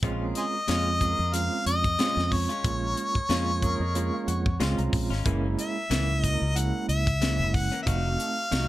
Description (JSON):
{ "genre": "straight-eighth soul blues", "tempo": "92 BPM", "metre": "4/4", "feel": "swing 55% on 16ths", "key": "Bb minor", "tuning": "A4 = 438 Hz", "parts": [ { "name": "overdriven tine electric piano", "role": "accompaniment", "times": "0.0-8.7 s", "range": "Ab3 to Bb5", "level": "-32 LUFS", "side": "right 4 dB", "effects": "fast tremolo" }, { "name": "mellow horn section", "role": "sustained chords", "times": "0.0-8.5 s", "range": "A3 to Bb4", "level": "-41 LUFS", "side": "left 2 dB", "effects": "none" }, { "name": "direct-recorded clean electric guitar", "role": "stabs", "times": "0.0-8.7 s", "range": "Gb2 to Gb4", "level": "-36 LUFS", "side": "left 5 dB", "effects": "spring reverb" }, { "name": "fingered electric bass", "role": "bass", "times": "0.0-8.7 s", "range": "F1 to F2", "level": "-28 LUFS", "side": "equal", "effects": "none" }, { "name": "tight funk drum kit", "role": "drums", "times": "0.0-8.7 s", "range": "hi-hat, kick drum, snare drum", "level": "-29 LUFS", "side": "equal", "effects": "none" }, { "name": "warm harmonica", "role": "melody", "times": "0.4-8.7 s", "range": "Ab4 to Gb5", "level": "-28 LUFS", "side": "left 1 dB", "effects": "overdrive" } ], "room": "light reverb", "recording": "none", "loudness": "-24 LUFS", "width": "side -15 dB against mid", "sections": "0.0-8.7 A section", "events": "tine electric piano fill 3.3-5.3", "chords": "0.0 Bbm7; 5.3 Gb7; 7.9 F7b9" }